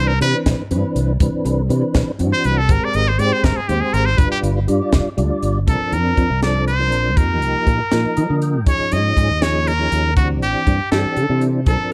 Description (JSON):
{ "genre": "electric jazz fusion", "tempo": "80 BPM (dotted quarters)", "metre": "6/8", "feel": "straight", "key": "unclear", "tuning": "A4 = 437 Hz", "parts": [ { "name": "trumpet with straight mute", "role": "melody", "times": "0.0-11.9 s", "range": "F#4 to Eb5", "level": "-23 LUFS", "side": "equal", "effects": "plate reverb" }, { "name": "mellow tonewheel organ", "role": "accompaniment", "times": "0.0-11.9 s", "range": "E3 to G5", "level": "-25 LUFS", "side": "equal", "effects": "slow rotary speaker, chorus vibrato" }, { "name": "fretless electric bass", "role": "bass", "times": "0.0-11.8 s", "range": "F1 to F3", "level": "-21 LUFS", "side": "equal", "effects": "ensemble chorus" }, { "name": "crisp fusion drum kit", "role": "drums", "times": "0.2-11.8 s", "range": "hi-hat, kick drum, snare drum", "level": "-22 LUFS", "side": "equal", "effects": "none" }, { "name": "vintage hollow-body jazz guitar", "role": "second line", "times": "10.9-11.9 s", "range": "A4", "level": "-30 LUFS", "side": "equal", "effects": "none" } ], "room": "light reverb", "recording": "dark, warm production", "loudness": "-18 LUFS", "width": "mono", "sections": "0.0-5.7 A section; 5.7-11.9 B section", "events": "muted trumpet solo 0.0-5.7; tonewheel organ fill 7.9-8.7", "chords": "0.0 Cmaj9; 2.7 Abmaj9; 4.2 G7; 5.7 C9sus4; 7.2 F9sus4; 8.7 Eb9sus4; 10.2 D9sus4" }